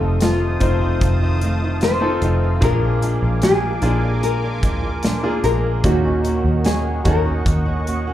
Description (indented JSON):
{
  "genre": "pop ballad",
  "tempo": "74 BPM",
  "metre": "4/4",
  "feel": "straight",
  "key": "Eb minor",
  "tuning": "A4 = 437 Hz",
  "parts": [
    { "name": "nylon-string guitar", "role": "melody", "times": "0.0-8.1 s", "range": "F4 to C5", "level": "-22 LUFS", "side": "left 2 dB", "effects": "none" },
    { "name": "bright concert grand piano", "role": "accompaniment", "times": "0.0-8.1 s", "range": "Bb2 to C5", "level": "-24 LUFS", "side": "equal", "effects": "slapback echo" },
    { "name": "sweeping resonant pad", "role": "sustained chords", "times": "0.0-8.1 s", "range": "Bb4 to Eb6", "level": "-29 LUFS", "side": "equal", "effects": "chorus" },
    { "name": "flamenco guitar", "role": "arpeggios", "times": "0.0-8.1 s", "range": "F2 to Gb4", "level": "-28 LUFS", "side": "right 1 dB", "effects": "slapback echo, ping-pong delay" },
    { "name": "vintage muted fingered electric bass", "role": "bass", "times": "0.0-8.1 s", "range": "F1 to Eb2", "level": "-20 LUFS", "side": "equal", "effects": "none" },
    { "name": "modern studio drum kit", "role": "drums", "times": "0.2-8.1 s", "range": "hi-hat, kick drum, snare drum", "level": "-22 LUFS", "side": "equal", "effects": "none" }
  ],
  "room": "small room ambience",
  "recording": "live gig heard through the venue's PA, club reverb",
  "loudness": "-16 LUFS",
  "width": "side -12 dB against mid",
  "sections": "0.0-8.1 A section",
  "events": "grand piano fill 7.9",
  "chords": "0.0 F7; 2.6 Bb7; 5.8 Ebm7",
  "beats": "0.21 1.02 1.82 | 2.62 3.42 4.23 5.03 | 5.84 6.65 7.46"
}